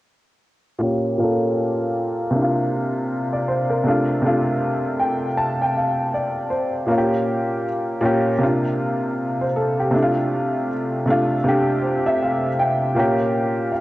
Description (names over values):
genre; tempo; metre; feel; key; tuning
hip hop; 79 BPM; 4/4; swing 62% on 16ths; F major; A4 = 440 Hz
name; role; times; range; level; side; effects
dark upright piano; solo; 0.8-13.8 s; Bb2 to A5; -18 LUFS; equal; low-pass filter
room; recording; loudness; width
moderate plate reverb, RT60 3.2 s; cassette tape; -18 LUFS; side -17 dB against mid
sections
0.8-6.9 A section; 6.9-13.8 B section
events
filter sweep on upright piano 0.8-6.9; upright piano fill 4.6-6.9, 11.5-13.0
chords
0.8 Bbm6; 2.3 C9sus4; 3.9 F6/C; 6.9 Bbm6; 8.4 C9sus4; 9.9 F6/C; 13.0 Bbm6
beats
| 0.82 1.58 2.34 3.10 | 3.86 4.62 5.38 6.13 | 6.89 7.65 8.41 9.17 | 9.93 10.69 11.45 12.21 | 12.97 13.73